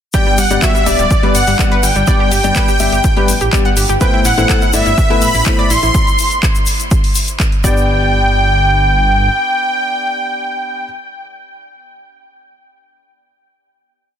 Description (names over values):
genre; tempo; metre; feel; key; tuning
progressive house; 124 BPM; 4/4; straight; G major; A4 = 440 Hz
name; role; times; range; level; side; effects
soft supersaw; melody; 0.1-10.8 s; D5 to C6; -16 LUFS; equal; sidechain pumping, digital delay
analog pluck; arpeggios; 0.1-10.8 s; G3 to F#5; -22 LUFS; right 1 dB; chorus, sidechain pumping, digital delay
dark baby grand piano; stabs; 0.1-10.8 s; G2 to E5; -20 LUFS; left 4 dB; sidechain pumping, digital delay
electronic kick drum; drums; 0.1-7.7 s; none; -15 LUFS; equal; none
house drum kit; drums; 0.1-7.6 s; handclaps, hi-hat; -22 LUFS; left 1 dB; none
egg shaker; percussion; 0.1-7.9 s; none; -23 LUFS; left 4 dB; none
dark detuned saw bass; bass; 0.4-9.3 s; D1 to A1; -17 LUFS; equal; sidechain pumping
room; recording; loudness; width
little or no reverb; dense, heavily limited modern master; -11 LUFS; side -9 dB against mid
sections
0.1-7.9 drop; 7.9-11.8 final hit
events
drop 0.1-7.9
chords
0.1 G; 4.0 Amadd9; 7.6 G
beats
| 0.14 0.62 1.11 1.59 | 2.07 2.56 3.04 3.53 | 4.01 4.49 4.98 5.46 | 5.95 6.43 6.91 7.40 | 7.88 8.37 8.85 9.33 | 9.82 10.30 10.78